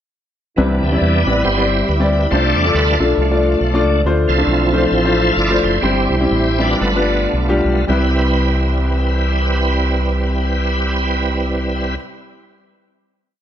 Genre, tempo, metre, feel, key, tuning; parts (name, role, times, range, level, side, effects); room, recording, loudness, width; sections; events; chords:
uptempo gospel; 104-139 BPM; 4/4; swing 57% on 8ths; C major; A4 = 440 Hz
clear concert grand piano; accompaniment; 0.6-12.0 s; C2 to D5; -19 LUFS; left 2 dB
bright tonewheel organ; sustained chords; 0.6-12.0 s; E3 to D5; -18 LUFS; right 2 dB; slow rotary speaker, chorus vibrato
warm French horn section; sustained chords; 0.6-12.0 s; E3 to B4; -27 LUFS; equal
deep dub fingered electric bass; bass; 0.6-11.9 s; F#1 to E2; -18 LUFS; equal
light reverb, small room ambience; -14 LUFS; side -10 dB against mid
0.6-7.9 breakdown; 7.9-12.5 final chord
tonewheel organ solo 0.6-7.9; slowing down 4.0-7.9
0.6 Cmaj7; 2.3 F6; 4.0 Dm7; 5.8 C/G; 6.8 G7; 7.9 Cmaj7